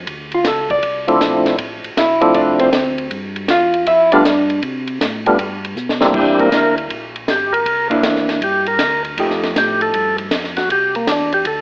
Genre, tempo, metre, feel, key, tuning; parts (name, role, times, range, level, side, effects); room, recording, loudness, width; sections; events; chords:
soul jazz organ trio; 158 BPM; 4/4; swing 66% on 8ths; C mixolydian; A4 = 440 Hz
mellow tonewheel organ; bass; 0.0-11.6 s; G1 to C3; -30 LUFS; equal; overdrive, chorus vibrato, slow rotary speaker
compact cocktail drum kit; drums; 0.1-11.6 s; crash cymbal, hi-hat, kick drum, ride cymbal, snare drum; -21 LUFS; equal
vintage hollow-body jazz guitar; accompaniment; 0.3-10.2 s; F3 to F5; -15 LUFS; equal
percussive tonewheel organ; melody; 1.1-11.6 s; F3 to Bb4; -15 LUFS; equal; slow rotary speaker
wet large studio reverb, RT60 1.2 s; worn, warbling old tape, cassette tape, warbly pitch drift, AM radio sound; -13 LUFS; side -25 dB against mid
0.0-6.1 A section; 6.1-11.6 A section
hollow-body jazz guitar solo 0.0-6.1; drum fill 5.8-6.1; tonewheel organ solo 6.1-11.6
0.1 Dm7; 3.1 G7(no3); 4.6 Csus2; 5.4 G; 6.1 C9; 9.2 F9; 10.7 C9